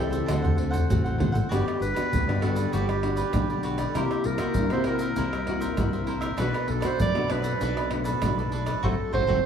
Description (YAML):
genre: samba and choro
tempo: 98 BPM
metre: 4/4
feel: straight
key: unclear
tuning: A4 = 440 Hz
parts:
  - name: clear clarinet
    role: melody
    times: 0.0-9.5 s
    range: G4 to D5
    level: -30 LUFS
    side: right 2 dB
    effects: analog delay
  - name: cavaquinho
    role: accompaniment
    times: 0.0-9.4 s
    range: D4 to G5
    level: -33 LUFS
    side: right 4 dB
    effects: none
  - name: nylon-string guitar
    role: accompaniment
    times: 0.0-9.4 s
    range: F#2 to F#4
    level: -30 LUFS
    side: left 4 dB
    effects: none
  - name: fat analog bass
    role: bass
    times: 0.0-9.4 s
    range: F#1 to C3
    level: -29 LUFS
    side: equal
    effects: none
  - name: egg shaker, pandeiro, surdo and tamborim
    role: percussion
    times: 0.1-9.4 s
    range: none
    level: -29 LUFS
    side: right 1 dB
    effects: none
room: moderate plate reverb, RT60 3.3 s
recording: dreamy mix soaked in reverb, studio ambience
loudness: -23 LUFS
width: side -8 dB against mid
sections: 0.0-9.5 A section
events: drum fill 0.3-1.5; band accent 8.8-9.5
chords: 0.3 D7; 1.5 Gmaj7; 4.0 C7#11; 6.4 Bm7; 8.8 F#dim